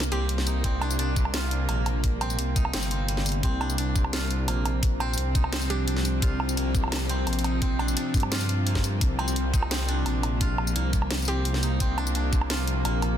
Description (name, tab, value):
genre	half-time drum and bass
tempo	172 BPM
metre	4/4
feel	half-time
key	C minor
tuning	A4 = 440 Hz
part	bowed-like drone	sustained chords	0.0-13.2 s	C3 to C4	-32 LUFS	equal	built-in reverb, sidechain pumping
part	koto	arpeggios	0.0-13.2 s	G3 to F4	-33 LUFS	right 1 dB	dub echo
part	dark detuned saw bass	bass	0.0-13.2 s	G1 to G2	-27 LUFS	equal	none
part	drum and bass drum kit	drums	0.0-13.1 s	hi-hat, snare drum, tambourine, woodblock	-31 LUFS	right 1 dB	none
part	hollow square pluck	melody	0.1-0.6, 5.7-6.2, 11.3-11.8 s	G4	-39 LUFS	right 1 dB	chorus, dub echo
part	electronic kick drum	drums	0.6-12.4 s	none	-25 LUFS	equal	none
room	light reverb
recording	dense, heavily limited modern master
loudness	-23 LUFS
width	side -10 dB against mid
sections	0.0-13.2 A section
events	none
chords	0.0 C5